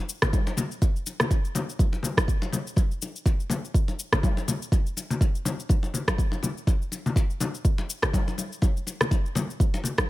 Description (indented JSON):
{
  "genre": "house",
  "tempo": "123 BPM",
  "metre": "4/4",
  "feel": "swing 56% on 16ths",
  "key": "none",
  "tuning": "none",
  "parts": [
    { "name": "electronic cabasa and rim click", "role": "drums", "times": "0.1-10.1 s", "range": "none", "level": "-30 LUFS", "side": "equal", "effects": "none" },
    { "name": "electronic kick drum", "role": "drums", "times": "0.2-10.1 s", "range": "none", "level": "-23 LUFS", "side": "equal", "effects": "overdrive" },
    { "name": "congas", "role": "percussion", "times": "0.2-10.1 s", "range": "none", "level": "-30 LUFS", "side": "left 3 dB", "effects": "none" }
  ],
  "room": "digital ambience",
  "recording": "none",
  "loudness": "-23 LUFS",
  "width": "side -17 dB against mid",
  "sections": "0.0-10.1 A section",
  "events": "none",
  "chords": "none",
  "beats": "0.33 | 0.82 1.31 1.80 2.28 | 2.77 3.26 3.75 4.24 | 4.72 5.21 5.70 6.19 | 6.67 7.16 7.65 8.14 | 8.63 9.11 9.60"
}